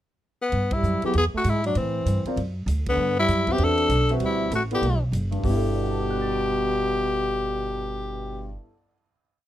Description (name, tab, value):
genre	jazz, small-group swing and bop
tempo	196 BPM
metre	4/4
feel	swing 62% on 8ths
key	G major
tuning	A4 = 440 Hz
part	growling tenor saxophone	melody	0.4-8.6 s	B3 to A4	-25 LUFS	left 3 dB	none
part	upright bass	bass	0.5-8.5 s	F#1 to A2	-26 LUFS	equal	none
part	vintage drum kit	drums	0.5-5.5 s	hi-hat, kick drum, ride cymbal	-36 LUFS	right 1 dB	none
part	growling trombone	second line	0.7-8.6 s	B2 to D4	-30 LUFS	right 6 dB	none
part	warm grand piano	accompaniment	1.0-9.4 s	G2 to D7	-30 LUFS	equal	none
room	little or no reverb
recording	close, detailed microphones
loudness	-22 LUFS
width	side -12 dB against mid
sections	0.0-0.5 pickup bar; 0.5-5.4 A section; 5.4-7.9 final chord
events	band accent 0.7, 2.8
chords	0.0 N.C.; 0.5 G6; 1.1 E; 1.8 Am7; 2.4 D; 3.0 G69